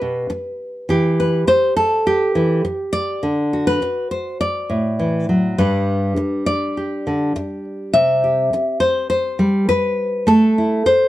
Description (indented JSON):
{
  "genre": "folk, solo fingerstyle acoustic guitar",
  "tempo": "102 BPM",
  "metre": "4/4",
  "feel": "straight",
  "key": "G major",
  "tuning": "A4 = 440 Hz",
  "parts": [
    { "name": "nylon-string guitar", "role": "solo", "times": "0.0-11.1 s", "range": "G2 to E5", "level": "-16 LUFS", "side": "equal", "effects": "none" }
  ],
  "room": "light reverb",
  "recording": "dark, warm production",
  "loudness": "-16 LUFS",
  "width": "side -15 dB against mid",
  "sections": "0.0-11.1 A section",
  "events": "none",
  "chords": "0.0 Em (rootless); 0.9 N.C.; 3.2 D; 5.6 G; 7.9 C; 10.3 Am"
}